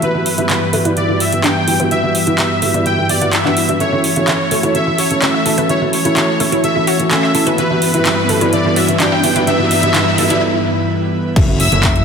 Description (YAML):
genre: progressive house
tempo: 127 BPM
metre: 4/4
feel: straight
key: E dorian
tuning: A4 = 440 Hz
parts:
  - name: soft supersaw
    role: melody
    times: 0.0-12.0 s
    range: B4 to G5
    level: -18 LUFS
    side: left 1 dB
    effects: sidechain pumping, ping-pong delay
  - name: airy breathy pad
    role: sustained chords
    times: 0.0-12.0 s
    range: G2 to B4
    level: -19 LUFS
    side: equal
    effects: chorus, sidechain pumping
  - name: felt-muted upright piano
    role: stabs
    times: 0.0-11.9 s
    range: B3 to A5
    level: -20 LUFS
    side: right 2 dB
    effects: sidechain pumping, low-pass filter
  - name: big-room dance drum kit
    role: drums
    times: 0.0-12.0 s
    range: crash cymbal, handclaps, hi-hat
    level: -19 LUFS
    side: right 1 dB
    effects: none
  - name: wide unison pluck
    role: arpeggios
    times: 0.4-11.9 s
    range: C#4 to E5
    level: -21 LUFS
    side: left 1 dB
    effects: phaser, cassette tape, sidechain pumping, dub echo
  - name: riser and impact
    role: sound effects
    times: 5.3-12.0 s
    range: none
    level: -23 LUFS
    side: equal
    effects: none
  - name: fat analog bass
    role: bass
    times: 11.4-12.0 s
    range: F#1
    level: -16 LUFS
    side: left 1 dB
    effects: sidechain pumping
  - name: electronic kick drum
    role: drums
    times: 11.4-11.9 s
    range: none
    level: -14 LUFS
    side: equal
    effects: none
  - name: warm symphonic violin section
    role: second line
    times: 11.6-12.0 s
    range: E6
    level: -19 LUFS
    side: left 3 dB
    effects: sidechain pumping
room: moderate lush hall reverb, RT60 2.6 s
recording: none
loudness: -12 LUFS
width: side -6 dB against mid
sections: 0.0-11.4 A section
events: build-up 0.0-11.4; filter sweep on synth pluck 0.0-11.4; riser 5.3-10.4; break 10.4-11.4; impact 11.4-12.0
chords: 0.0 Emadd9/G; 3.8 F#m7; 7.6 Emadd9/G; 11.4 F#m7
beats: | 0.02 0.50 0.97 1.44 | 1.91 2.39 2.86 3.33 | 3.80 4.28 4.75 5.22 | 5.69 6.17 6.64 7.11 | 7.58 8.06 8.53 9.00 | 9.47 9.95 10.42 10.89 | 11.36 11.84